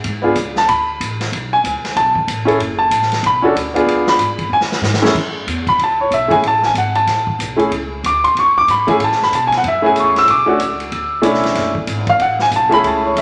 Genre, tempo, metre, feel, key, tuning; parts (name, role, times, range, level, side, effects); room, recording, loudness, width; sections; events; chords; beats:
jazz, small-group swing and bop; 187 BPM; 4/4; swing 62% on 8ths; F# minor; A4 = 440 Hz
upright bass; bass; 0.0-13.2 s; F#1 to B2; -28 LUFS; equal
vintage drum kit; drums; 0.0-13.2 s; crash cymbal, hi-hat, kick drum, ride cymbal, snare drum; -26 LUFS; equal
clear upright piano; accompaniment; 0.2-13.2 s; F#2 to E6; -16 LUFS; equal
wet large studio reverb, RT60 1.3 s; -15 LUFS; mono
0.0-5.1 A section; 5.1-13.2 A section
drum fill 4.5-5.1
0.0 C#7(no3); 1.3 Amaj9; 2.6 F#m; 3.2 Bm7; 3.9 C#7b9; 5.1 F#m7; 10.3 Bm7
| 0.04 0.36 0.68 1.00 | 1.32 1.63 1.95 2.27 | 2.59 2.91 3.23 3.55 | 3.87 4.19 4.51 4.83 | 5.15 5.47 5.79 6.11 | 6.43 6.75 7.07 7.39 | 7.71 8.03 8.35 8.67 | 8.99 9.31 9.63 9.95 | 10.27 10.59 10.91 11.23 | 11.55 11.88 12.20 12.52 | 12.84 13.16